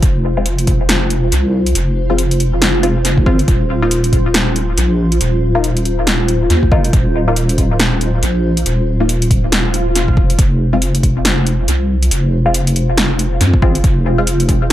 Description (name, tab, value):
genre	deep dubstep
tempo	139 BPM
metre	4/4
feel	swing 59% on 16ths, half-time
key	F minor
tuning	A4 = 437 Hz
part	granular cloud pad	sustained chords	0.0-14.7 s	F4 to C5	-21 LUFS	equal	built-in reverb
part	deep soft wobble bass	bass	0.0-14.7 s	Eb1 to F2	-15 LUFS	equal	chorus
part	deep house drum kit	drums	0.0-14.7 s	hi-hat, snare drum	-18 LUFS	equal	overdrive, dub echo
part	electronic kick drum	drums	0.0-14.6 s	none	-13 LUFS	equal	overdrive
part	filtered dub chord stab	stabs	0.4-14.3 s	Ab3 to F4	-21 LUFS	left 2 dB	phaser, analog chorus, dub echo
part	swell	sound effects	9.7-10.4 s	none	-23 LUFS	left 2 dB	none
room	light reverb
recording	echo-heavy mix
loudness	-12 LUFS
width	side -13 dB against mid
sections	0.0-14.7 A section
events	swell 9.7-10.4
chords	0.0 Fm; 3.5 Ebsus2; 10.4 Fm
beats	| 0.03 0.46 0.89 1.32 | 1.75 2.19 2.62 3.05 | 3.48 3.91 4.34 4.78 | 5.21 5.64 6.07 6.50 | 6.93 7.37 7.80 8.23 | 8.66 9.09 9.52 9.96 | 10.39 10.82 11.25 11.68 | 12.11 12.54 12.98 13.41 | 13.84 14.27 14.70